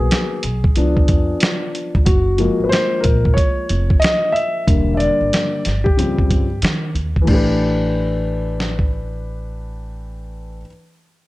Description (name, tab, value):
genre	hip hop, jazz-hop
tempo	92 BPM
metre	4/4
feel	swing 63% on 16ths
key	unclear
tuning	A4 = 442 Hz
part	dark grand piano	accompaniment	0.0-10.7 s	C#3 to E5	-19 LUFS	left 1 dB	none
part	upright bass	bass	0.0-10.6 s	E1 to D#3	-22 LUFS	equal	none
part	dusty soul sampler-style drum kit	drums	0.1-8.9 s	crash cymbal, hi-hat, kick drum, snare drum	-17 LUFS	equal	vintage 12-bit sampler grit
room	light reverb, studio ambience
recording	dark, warm production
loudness	-15 LUFS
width	side -18 dB against mid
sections	0.0-7.3 A section; 7.3-9.9 B section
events	grand piano solo 0.0-7.3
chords	0.0 G#m7; 0.8 C#7b9; 2.1 F#maj9; 4.7 Em7b5; 6.0 D#13; 7.3 Asus2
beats	0.10 0.76 1.41 | 2.06 2.71 3.36 4.02 | 4.67 5.32 5.97 6.62 | 7.28 7.93 8.58 9.23